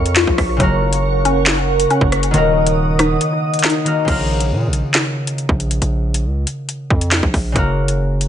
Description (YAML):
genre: hip hop, drill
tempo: 138 BPM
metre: 4/4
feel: half-time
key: Bb minor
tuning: A4 = 438 Hz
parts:
  - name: concert harp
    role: accompaniment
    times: 0.0-8.3 s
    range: Db3 to Bb4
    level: -20 LUFS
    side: left 1 dB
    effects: none
  - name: glassy FM pad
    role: sustained chords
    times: 0.0-4.1 s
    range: Bb4 to Eb6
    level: -21 LUFS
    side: right 3 dB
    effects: ensemble chorus, built-in reverb
  - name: hollow square pluck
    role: arpeggios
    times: 0.0-4.1 s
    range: Eb3 to F4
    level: -21 LUFS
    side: left 4 dB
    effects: chorus, tape echo
  - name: distorted 808-style bass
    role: bass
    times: 0.0-8.3 s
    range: Eb1 to Bb2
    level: -19 LUFS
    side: equal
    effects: distortion
  - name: drill drum kit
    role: drums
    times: 0.1-8.3 s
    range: crash cymbal, handclaps, hi-hat, kick drum, rim click, snare drum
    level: -18 LUFS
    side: equal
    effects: overdrive, vintage 12-bit sampler grit
room: light reverb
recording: nothing above 10.9 kHz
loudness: -14 LUFS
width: side -10 dB against mid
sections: 0.0-4.1 A section; 4.1-8.3 B section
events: break 3.2-4.1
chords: 0.0 Bbm; 0.6 Gb; 2.3 Ebm; 4.1 Bbm; 7.6 Gb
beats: 0.17 | 0.60 1.03 1.47 1.91 | 2.34 2.77 3.21 3.64 | 4.08 4.51 4.95 5.38 | 5.82 6.25 6.69 7.12 | 7.56 7.99